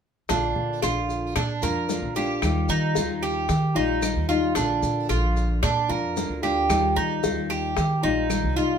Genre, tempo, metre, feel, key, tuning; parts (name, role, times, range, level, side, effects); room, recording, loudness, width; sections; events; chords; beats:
latin, Cuban son and guajira; 112 BPM; 4/4; straight; Bb major; A4 = 440 Hz
nylon-string guitar; accompaniment; 0.3-8.8 s; D3 to F4; -27 LUFS; left 4 dB
Cuban tres; arpeggios; 0.3-8.8 s; D4 to Bb4; -26 LUFS; right 5 dB
upright bass; bass; 0.3-8.8 s; Bb1 to Eb3; -27 LUFS; equal
bongos; percussion; 0.3-8.8 s; -31 LUFS; left 6 dB
maracas; percussion; 0.3-8.8 s; -36 LUFS; left 2 dB
claves; percussion; 0.8-8.6 s; -36 LUFS; right 3 dB
wet studio reverb, RT60 0.6 s; band playing live in one room; -21 LUFS; side -7 dB against mid
0.3-8.8 A section
0.3 Bb; 2.4 Ebadd9; 4.6 Bb; 6.7 Ebadd9
| 0.30 0.83 1.36 1.90 | 2.43 2.96 3.50 4.03 | 4.56 5.10 5.63 6.16 | 6.70 7.23 7.76 8.30